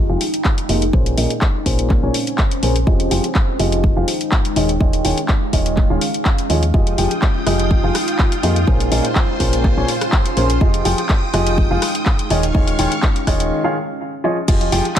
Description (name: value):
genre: piano house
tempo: 124 BPM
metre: 4/4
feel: swing 53% on 16ths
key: F minor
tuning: A4 = 440 Hz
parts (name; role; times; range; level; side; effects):
- warm baby grand piano; riff; 0.0-14.8 s; Bb2 to G5; -21 LUFS; equal; sidechain pumping, low-pass filter, digital delay
- solid FM bass; bass; 0.0-14.8 s; Eb1 to F2; -20 LUFS; equal; sidechain pumping
- deep dark ambient pad; texture; 0.0-15.0 s; Ab3 to C6; -24 LUFS; right 1 dB; chorus, built-in reverb, sidechain pumping
- house drum kit; drums; 0.2-15.0 s; crash cymbal, handclaps, hi-hat, rim click; -23 LUFS; left 1 dB; studio reverb
- electronic kick drum; drums; 0.5-15.0 s; none; -16 LUFS; equal; studio reverb
- string machine, violins; sustained chords; 6.7-15.0 s; F4 to Eb6; -25 LUFS; equal; ensemble chorus, sidechain pumping
room: digital ambience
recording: none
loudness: -14 LUFS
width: side -10 dB against mid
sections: 0.0-14.5 A section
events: break 13.5-14.5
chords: 0.0 Fm9; 0.9 Bbm9; 2.9 Fm9; 4.6 Eb9sus4; 6.7 Fm9; 8.7 Bbm9; 10.6 Fm9; 12.3 Eb9sus4; 14.5 Fm9